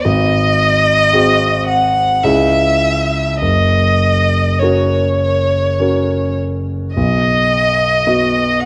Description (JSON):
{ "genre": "classical, romantic duo for violin and grand piano", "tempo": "49-56 BPM", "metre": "3/4", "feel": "rubato", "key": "unclear", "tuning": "A4 = 439 Hz", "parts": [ { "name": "rich violin", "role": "melody", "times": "0.0-8.7 s", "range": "C#5 to F#5", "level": "-16 LUFS", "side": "equal", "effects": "none" }, { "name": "warm concert grand piano", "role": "accompaniment", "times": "0.0-8.7 s", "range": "F#1 to D#5", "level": "-17 LUFS", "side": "equal", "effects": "none" } ], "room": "moderate recital hall reverb, RT60 1.5 s", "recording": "worn, warbling old tape, cassette tape, warbly pitch drift", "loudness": "-14 LUFS", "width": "mono", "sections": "0.0-8.7 A section", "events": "none", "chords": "0.0 G#7; 2.2 C#m; 3.4 F#; 7.0 B" }